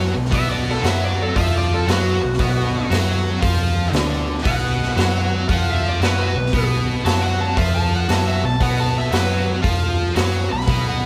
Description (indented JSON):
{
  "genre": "blues rock power trio and southern rock",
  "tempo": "116 BPM",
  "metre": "4/4",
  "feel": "swing 68% on 8ths",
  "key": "B minor",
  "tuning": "A4 = 440 Hz",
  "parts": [
    { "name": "cranked stack guitar", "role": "riff", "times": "0.0-11.1 s", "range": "B2 to F#4", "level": "-25 LUFS", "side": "equal", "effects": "overdrive" },
    { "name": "vintage muted picked electric bass", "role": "bass", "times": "0.0-11.1 s", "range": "B1 to F#2", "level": "-23 LUFS", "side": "equal", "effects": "none" },
    { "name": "raw garage drum kit", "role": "drums", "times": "0.3-10.8 s", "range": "hi-hat, kick drum, snare drum", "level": "-25 LUFS", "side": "equal", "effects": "none" },
    { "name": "overdriven slide guitar", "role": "melody", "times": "0.4-11.0 s", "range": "F#4 to B5", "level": "-27 LUFS", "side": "equal", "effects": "none" }
  ],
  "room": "light reverb",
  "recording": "band playing live in one room",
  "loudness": "-19 LUFS",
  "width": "mono",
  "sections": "0.0-11.1 A section",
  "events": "none",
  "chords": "0.0 Bm"
}